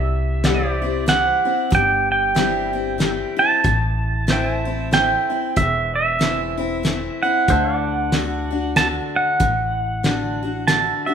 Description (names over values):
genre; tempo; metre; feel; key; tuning
honky-tonk and classic country; 94 BPM; 3/4; swing 60% on 8ths; unclear; A4 = 439 Hz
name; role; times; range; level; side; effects
pedal steel guitar; second line; 0.0-11.1 s; E5 to A5; -20 LUFS; right 3 dB; none
picked steel-string acoustic guitar; accompaniment; 0.0-11.1 s; E2 to F#4; -25 LUFS; left 5 dB; none
upright bass; bass; 0.0-10.9 s; E1 to D2; -25 LUFS; equal; none
pedal steel guitar; sustained chords; 0.4-11.1 s; G4 to A5; -28 LUFS; right 1 dB; none
cloth-damped thuddy drum kit; drums; 0.4-10.9 s; hi-hat, kick drum, snare drum; -21 LUFS; equal; none
room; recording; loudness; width
moderate large studio reverb, RT60 1.2 s; minimal, uncompressed stereo recording; -17 LUFS; side -7 dB against mid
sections
0.0-11.1 A section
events
pedal steel guitar solo 0.0-11.1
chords
0.0 C; 3.6 Am; 7.5 D